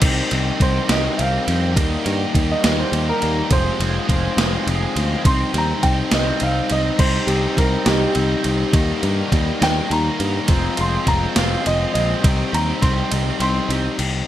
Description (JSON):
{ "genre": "indie rock", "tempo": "69 BPM (dotted quarters)", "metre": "6/8", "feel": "straight", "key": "C minor", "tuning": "A4 = 439 Hz", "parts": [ { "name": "mellow tonewheel organ", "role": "sustained chords", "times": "0.0-14.0 s", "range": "Eb4 to C6", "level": "-32 LUFS", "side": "right 1 dB", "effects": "none" }, { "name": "overdriven electric guitar", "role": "riff", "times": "0.0-14.0 s", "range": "F2 to Ab4", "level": "-26 LUFS", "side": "right 6 dB", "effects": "analog chorus, slapback echo" }, { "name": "sludgy distorted guitar", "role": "riff", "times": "0.0-14.3 s", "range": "G3 to G4", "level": "-25 LUFS", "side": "left 8 dB", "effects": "overdrive" }, { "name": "picked electric bass", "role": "bass", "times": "0.0-14.2 s", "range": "F1 to G2", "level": "-22 LUFS", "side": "equal", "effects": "none" }, { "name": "gated 80s digital drum machine", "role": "drums", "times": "0.0-14.1 s", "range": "crash cymbal, hi-hat, kick drum, ride cymbal, snare drum", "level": "-21 LUFS", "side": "equal", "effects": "gated reverb, gated reverb snare" }, { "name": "warm upright piano", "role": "melody", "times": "0.6-13.7 s", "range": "Eb4 to C6", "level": "-24 LUFS", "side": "right 1 dB", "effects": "slapback echo" } ], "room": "light reverb", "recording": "none", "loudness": "-16 LUFS", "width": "side -12 dB against mid", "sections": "0.0-14.0 A section", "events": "upright piano solo 0.0-14.0; break 13.1-14.0", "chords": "0.0 Cm7; 1.8 Ebmaj7; 3.5 Fm7; 5.2 Cm7; 8.7 Ebmaj7; 10.5 Fm7; 12.2 Cm7" }